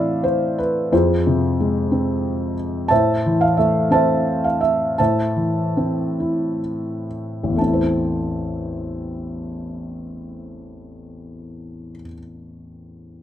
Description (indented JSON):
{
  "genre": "classical, lyrical solo piano",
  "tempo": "41-62 BPM (dotted quarters)",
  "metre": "6/8",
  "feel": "rubato",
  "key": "A harmonic minor",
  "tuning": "A4 = 440 Hz",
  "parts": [
    { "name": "felt-muted upright piano", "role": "solo", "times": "0.0-13.2 s", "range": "A1 to A5", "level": "-19 LUFS", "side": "equal", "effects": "none" }
  ],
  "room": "light reverb",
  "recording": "close, detailed microphones",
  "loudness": "-18 LUFS",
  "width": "side -11 dB against mid",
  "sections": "0.0-7.6 A section; 7.6-13.2 B section",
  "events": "slowing down 2.9-7.6",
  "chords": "0.0 Am; 0.9 Fm; 2.9 Am",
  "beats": "| 0.92 1.91 | 2.91 3.93 | 4.99 6.20 | 7.59 9.04 | 10.42 11.80"
}